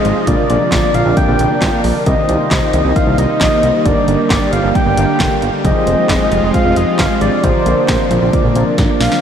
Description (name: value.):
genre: synth-pop.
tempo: 134 BPM.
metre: 4/4.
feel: straight.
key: unclear.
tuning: A4 = 440 Hz.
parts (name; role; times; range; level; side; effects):
soft octave-layered synth lead; melody; 0.0-9.2 s; C5 to G5; -17 LUFS; equal; chorus, analog delay.
mellow synth brass; accompaniment; 0.0-9.2 s; C4 to Eb5; -19 LUFS; right 1 dB; chorus.
phased analog pad; sustained chords; 0.0-9.2 s; C3 to G4; -19 LUFS; right 1 dB; phaser, chorus.
punchy analog drum machine; drums; 0.0-9.2 s; handclaps, hi-hat, kick drum, snare drum; -18 LUFS; equal; none.
fat analog bass; bass; 0.1-9.1 s; F1 to C2; -17 LUFS; equal; none.
soft round pluck; arpeggios; 0.2-9.2 s; D3 to C4; -23 LUFS; left 1 dB; chorus, analog delay.
room: wet huge ambient reverb, RT60 8.2 s.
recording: dreamy mix soaked in reverb.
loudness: -11 LUFS.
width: side -8 dB against mid.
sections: 0.0-9.2 A section.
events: drum fill 8.8-9.2.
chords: 0.3 Bbadd9; 2.1 Cm7; 3.9 Gm; 5.6 Fm; 7.4 Bbadd9.